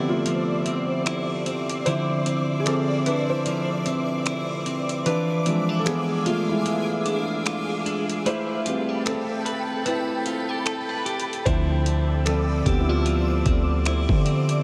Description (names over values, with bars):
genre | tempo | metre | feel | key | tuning
contemporary R&B | 75 BPM | 4/4 | swing 58% on 16ths | D dorian | A4 = 440 Hz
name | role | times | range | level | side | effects
felt-muted upright piano | accompaniment | 0.0-14.6 s | F3 to C5 | -29 LUFS | equal | none
granular cloud pad | sustained chords | 0.0-14.6 s | G#4 to E6 | -32 LUFS | equal | built-in reverb, ensemble chorus
clean electric guitar | arpeggios | 0.0-14.6 s | D3 to B4 | -29 LUFS | equal | spring reverb, delay
dusty soul sampler-style drum kit | drums | 0.3-14.6 s | finger snaps, hi-hat, kick drum | -31 LUFS | equal | none
warm 808-style bass | bass | 11.5-14.6 s | D2 to D3 | -25 LUFS | equal | none
room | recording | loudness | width
wet huge ambient reverb, RT60 7.8 s | dreamy mix soaked in reverb | -24 LUFS | mono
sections
0.0-14.6 A section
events
break 0.0-11.5; felt piano solo 0.0-14.6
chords
0.0 Dm9; 5.1 E7b9; 8.3 Am9; 11.5 Dm9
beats
0.26 1.06 | 1.86 2.66 3.46 4.26 | 5.06 5.86 6.66 7.46 | 8.26 9.06 9.86 10.66 | 11.46 12.26 13.06 13.86